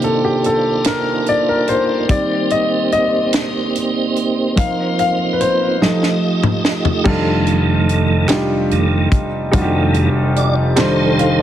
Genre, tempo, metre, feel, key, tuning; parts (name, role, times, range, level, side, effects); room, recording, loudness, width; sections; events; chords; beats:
slow gospel; 48 BPM (dotted quarters); 6/8; straight; A4 = 442 Hz
warm concert grand piano; accompaniment; 0.0-11.4 s; F1 to F5; -16 LUFS; left 1 dB
tonewheel organ; sustained chords; 0.0-11.4 s; F2 to Eb5; -18 LUFS; right 2 dB; fast rotary speaker, chorus vibrato
tight funk drum kit; drums; 0.0-11.4 s; crash cymbal, hi-hat, kick drum, snare drum, toms; -19 LUFS; equal
group handclap; percussion; 8.3-11.2 s; -29 LUFS; right 3 dB
light reverb, small room reverb; heavily compressed radio sound; -14 LUFS; side -11 dB against mid
0.0-7.1 A section; 7.1-11.4 B section
grand piano solo 0.0-7.1; drum fill 5.8-7.1; tonewheel organ solo 7.1-11.4; grand piano fill 10.8-11.4
0.0 Cm11; 2.1 Eb6; 4.6 F7sus4; 5.8 F9; 7.1 F13
0.85 | 2.10 3.34 | 4.58 5.82 | 7.06 8.30 | 9.54 10.77